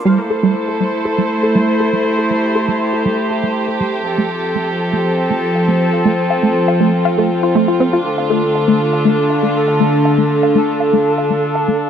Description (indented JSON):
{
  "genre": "techno",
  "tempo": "120 BPM",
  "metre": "4/4",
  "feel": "straight",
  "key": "A minor",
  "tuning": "A4 = 440 Hz",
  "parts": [
    { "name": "warbly tape-like pad", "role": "texture", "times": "0.0-11.9 s", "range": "D4 to D6", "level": "-20 LUFS", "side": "left 1 dB", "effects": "chorus, built-in reverb" },
    { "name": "dark chamber string section", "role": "sustained chords", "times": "0.1-11.9 s", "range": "D3 to C5", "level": "-17 LUFS", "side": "equal", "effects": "none" },
    { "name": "tight sequenced synth", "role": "arpeggios", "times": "0.1-11.8 s", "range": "G3 to F5", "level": "-17 LUFS", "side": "equal", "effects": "chorus, tape echo" },
    { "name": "analog synth brass", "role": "melody", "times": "8.1-11.9 s", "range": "A4", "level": "-18 LUFS", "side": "right 1 dB", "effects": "chorus, tape echo" }
  ],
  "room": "light reverb",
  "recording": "dry, gritty hardware recording",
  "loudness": "-13 LUFS",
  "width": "side -8 dB against mid",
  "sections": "0.1-11.9 A section",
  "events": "none",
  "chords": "0.1 Am7; 4.1 F; 8.1 Dm"
}